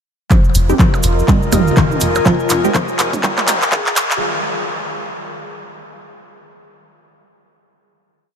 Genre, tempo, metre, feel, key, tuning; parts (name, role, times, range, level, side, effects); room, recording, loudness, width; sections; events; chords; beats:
minimal techno; 123 BPM; 4/4; swing 59% on 16ths; F minor; A4 = 436 Hz
mallet-like synth pluck; riff; 0.3-3.8 s; Eb3 to G3; -22 LUFS; equal; chorus, sidechain pumping, ping-pong delay
electronic kick drum; drums; 0.3-3.8 s; -15 LUFS; equal
garage drum kit; drums; 0.3-4.2 s; handclaps, hi-hat; -19 LUFS; equal; high-pass filter on snare, high-pass filter on hats
cabasa; percussion; 0.3-4.2 s; -26 LUFS; right 3 dB
electronic percussion blips and toms; percussion; 0.3-4.1 s; -24 LUFS; right 4 dB; ping-pong delay
warbly tape-like pad; texture; 0.3-4.2 s; F4 to Ab5; -23 LUFS; equal; chorus, built-in reverb, sidechain pumping
rubbery square bass; bass; 0.5-4.1 s; F1; -18 LUFS; equal; sidechain pumping
filtered dub chord stab; stabs; 0.7-3.6 s; Ab3 to G4; -24 LUFS; right 1 dB; phaser, ping-pong delay
vibraphone with medium hard mallets; melody; 2.3-3.9 s; F4 to Ab4; -26 LUFS; left 5 dB; vintage 12-bit sampler grit, ping-pong delay
moderate huge ambient reverb, RT60 4.5 s; dreamy mix soaked in reverb, high-pass filter; -13 LUFS; side -8 dB against mid
0.3-4.2 build
build-up 0.3-4.2; drum fill 0.3-4.2; filter sweep on synth arpeggio sound 0.3-4.2; filter sweep 0.3-4.2
0.3 Fm7
| 0.31 0.79 1.28 1.77 | 2.26 2.75 3.23 3.72